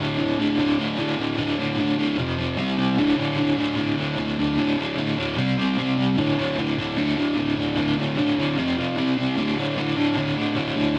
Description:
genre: rock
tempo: 150 BPM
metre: 4/4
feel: straight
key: D minor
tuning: A4 = 439 Hz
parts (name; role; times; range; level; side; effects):
- overdriven semi-hollow guitar; solo; 0.0-11.0 s; D2 to C4; -23 LUFS; equal; tremolo
room: wet booth ambience, RT60 0.2 s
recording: rough rehearsal-room recording, tube saturation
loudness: -23 LUFS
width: mono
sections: 0.0-11.0 A section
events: none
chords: 0.0 D5; 2.2 F5; 2.6 C5; 3.0 D5; 5.4 C5; 6.2 D5; 8.6 F5; 9.0 C5; 9.4 D5

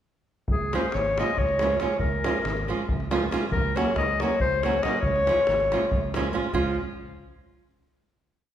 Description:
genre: balkan folk, Balkan wedding band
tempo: 278 BPM (eighths)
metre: 7/8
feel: straight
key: Db major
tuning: A4 = 440 Hz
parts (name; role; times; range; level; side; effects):
- warm clarinet; melody; 0.5-6.1 s; Ab4 to Eb5; -25 LUFS; left 2 dB; none
- fingered electric bass; bass; 0.5-6.8 s; Ab1 to Db2; -31 LUFS; equal; none
- davul; percussion; 0.5-6.8 s; none; -30 LUFS; left 1 dB; none
- nylon-string guitar; accompaniment; 0.7-6.8 s; F3 to Gb4; -28 LUFS; right 4 dB; none
room: wet recital hall reverb, RT60 1.5 s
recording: recorded in a church or concert hall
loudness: -22 LUFS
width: side -10 dB against mid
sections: 0.5-6.5 A section; 6.5-8.0 final chord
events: none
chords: 0.5 Db; 3.5 Gb/Db; 5.0 Db

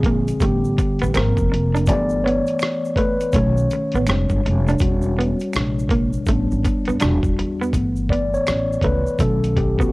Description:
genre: R&B, neo-soul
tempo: 82 BPM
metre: 4/4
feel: swing 63% on 16ths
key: unclear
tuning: A4 = 439 Hz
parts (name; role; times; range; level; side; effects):
- mellow tine electric piano; accompaniment; 0.0-9.9 s; B#2 to D5; -21 LUFS; left 1 dB; medium stereo tremolo, cassette tape
- upright bass; bass; 0.0-9.8 s; E1 to E2; -21 LUFS; equal; none
- dusty soul sampler-style drum kit; drums; 0.0-9.9 s; hi-hat, kick drum, rim click; -22 LUFS; equal; cassette tape
- semi-hollow electric guitar; second line; 0.1-9.9 s; A3 to D4; -24 LUFS; right 2 dB; lush chorus, cassette tape
- egg shaker and finger snaps; percussion; 0.3-9.9 s; none; -38 LUFS; right 4 dB; none
room: little or no reverb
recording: home recording on cassette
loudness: -17 LUFS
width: side -22 dB against mid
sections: 0.0-7.7 A section; 7.7-9.9 B section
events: tine electric piano solo 0.0-7.7, 7.7-9.9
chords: 0.4 A9sus4; 1.1 G#69; 1.9 G69; 3.3 B9; 4.1 Fm69; 4.8 Em69; 5.5 A#9; 6.3 A9sus4; 7.0 Em9; 7.7 G69; 9.2 B9

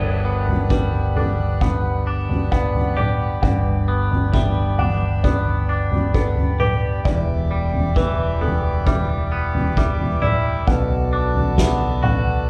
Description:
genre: post-rock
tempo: 66 BPM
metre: 4/4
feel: straight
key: unclear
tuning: A4 = 440 Hz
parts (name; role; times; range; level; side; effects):
- pedal harmonium; sustained chords; 0.0-12.5 s; E3 to F#5; -31 LUFS; equal; none
- felt-muted upright piano; arpeggios; 0.0-12.5 s; A4 to F#5; -32 LUFS; equal; none
- twangy electric guitar; arpeggios; 0.0-12.5 s; E2 to G4; -28 LUFS; equal; none
- growling fingered electric bass; bass; 0.0-12.5 s; E1 to B1; -25 LUFS; equal; overdrive
- soft-mallet drum kit; drums; 0.5-12.2 s; kick drum, snare drum, toms; -23 LUFS; equal; none
room: moderate large studio reverb, RT60 1.3 s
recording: band playing live in one room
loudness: -20 LUFS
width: mono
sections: 0.0-12.5 A section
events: none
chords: 0.0 Gmaj7; 7.1 Em7; 10.7 Bm7

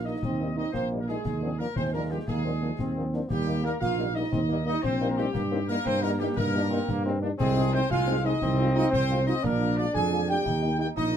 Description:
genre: military-style march for wind band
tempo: 117 BPM (dotted quarters)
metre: 6/8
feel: straight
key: Eb major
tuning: A4 = 445 Hz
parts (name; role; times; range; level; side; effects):
- clear trumpet section; melody; 0.0-11.2 s; G4 to Ab5; -36 LUFS; left 2 dB; none
- clear woodwind section; second line; 0.0-11.2 s; G4 to Ab5; -35 LUFS; left 2 dB; none
- warm euphonium; second line; 0.0-11.2 s; G3 to Ab4; -31 LUFS; right 4 dB; none
- clear trombone section; sustained chords; 0.0-11.2 s; Ab3 to Eb4; -32 LUFS; left 2 dB; none
- dark tuba; bass; 0.0-11.2 s; Bb1 to G2; -29 LUFS; right 2 dB; none
- mellow French horn section; accompaniment; 0.1-11.2 s; F3 to F4; -33 LUFS; left 3 dB; none
- concert snare drum, concert bass drum and clash cymbals; drums; 0.2-11.1 s; none; -35 LUFS; left 2 dB; none
room: moderate booth ambience, RT60 0.2 s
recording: none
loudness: -24 LUFS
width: side -9 dB against mid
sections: 0.0-11.2 A section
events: none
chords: 0.0 Eb; 1.3 Bb7/Eb; 3.3 Eb; 5.4 Eb/G; 7.4 Ab/C; 8.4 Fm7/C; 9.4 Bb7; 10.5 Eb

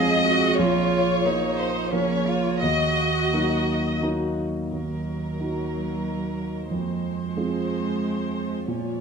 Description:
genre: neoclassical piano and strings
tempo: 84-93 BPM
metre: 3/4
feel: rubato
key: Eb dorian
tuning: A4 = 444 Hz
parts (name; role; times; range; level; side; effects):
- rich chamber violin section; melody; 0.0-9.0 s; Bb4 to Eb5; -26 LUFS; left 3 dB; none
- rich cello; second line; 0.0-9.0 s; F3 to Ab4; -30 LUFS; right 6 dB; none
- dark baby grand piano; accompaniment; 0.0-9.0 s; Bb1 to F5; -25 LUFS; right 3 dB; none
- warbly tape-like pad; sustained chords; 0.1-9.0 s; Ab3 to F5; -34 LUFS; left 4 dB; chorus, built-in reverb, phaser
room: wet recital hall reverb, RT60 1.7 s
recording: minimal, uncompressed stereo recording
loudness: -22 LUFS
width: side -6 dB against mid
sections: 0.0-4.7 A section; 4.7-9.0 B section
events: none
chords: 0.0 Fm; 0.6 Bbm; 2.6 Ebm; 6.7 Fm

